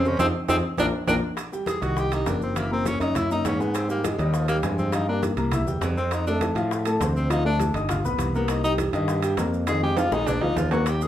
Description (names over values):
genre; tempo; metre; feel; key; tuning
Afro-Cuban jazz; 202 BPM; 4/4; straight; C minor; A4 = 440 Hz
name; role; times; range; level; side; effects
bright tenor saxophone; melody; 0.0-11.1 s; F3 to Ab4; -27 LUFS; left 1 dB; plate reverb
breathy bright concert flute; second line; 0.0-1.2 s; Ab4 to Bb4; -34 LUFS; right 4 dB; none
modern bright fingered electric bass; bass; 0.0-11.1 s; F#1 to A2; -26 LUFS; right 1 dB; none
warm upright piano; accompaniment; 0.1-11.1 s; C3 to F6; -27 LUFS; left 2 dB; none
bongos; percussion; 0.1-11.1 s; none; -35 LUFS; left 4 dB; none
maracas; percussion; 0.1-11.1 s; none; -44 LUFS; right 8 dB; none
congas; percussion; 0.2-11.1 s; none; -33 LUFS; equal; none
timbales; percussion; 0.2-11.0 s; none; -33 LUFS; right 6 dB; none
room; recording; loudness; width
wet club reverb, RT60 0.8 s; heard from further back in the room; -22 LUFS; side -11 dB against mid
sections
0.0-1.4 A section; 1.4-10.9 B section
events
band accent 0.2-1.4; drum fill 0.5-1.4, 10.0-10.9; tenor saxophone solo 1.4-11.1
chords
0.2 Fm7; 0.8 Bb; 1.4 Cm7; 2.6 F#9; 3.7 Ab5; 4.9 Gm7; 5.5 C; 6.1 F6; 7.3 Dm; 7.9 G7#9; 8.5 Cm7; 9.7 Fm7; 10.3 Bb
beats
| 0.20 0.49 0.79 1.08 | 1.38 1.68 1.97 2.27 | 2.56 2.86 3.16 3.45 | 3.75 4.04 4.34 4.64 | 4.93 5.23 5.53 5.82 | 6.12 6.42 6.71 7.01 | 7.31 7.60 7.90 8.20 | 8.49 8.79 9.09 9.38 | 9.68 9.97 10.27 10.57 | 10.87